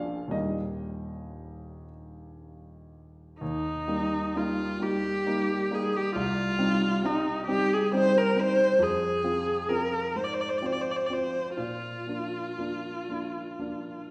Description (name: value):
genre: classical, romantic duo for viola and grand piano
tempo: 39-46 BPM (dotted quarters)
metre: 6/8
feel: rubato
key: Eb major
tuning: A4 = 441 Hz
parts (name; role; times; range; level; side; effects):
- warm grand piano; accompaniment; 0.0-14.1 s; Eb1 to Ab5; -33 LUFS; equal; none
- rich viola; melody; 3.4-14.1 s; Eb4 to D5; -30 LUFS; equal; none
room: wet recital hall reverb, RT60 1.5 s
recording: heard from further back in the room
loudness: -28 LUFS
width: mono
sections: 0.0-3.4 A section; 3.4-14.1 B section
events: none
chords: 0.3 Eb; 6.2 Cm; 8.8 Fm; 10.1 Fm/Ab; 11.6 Bb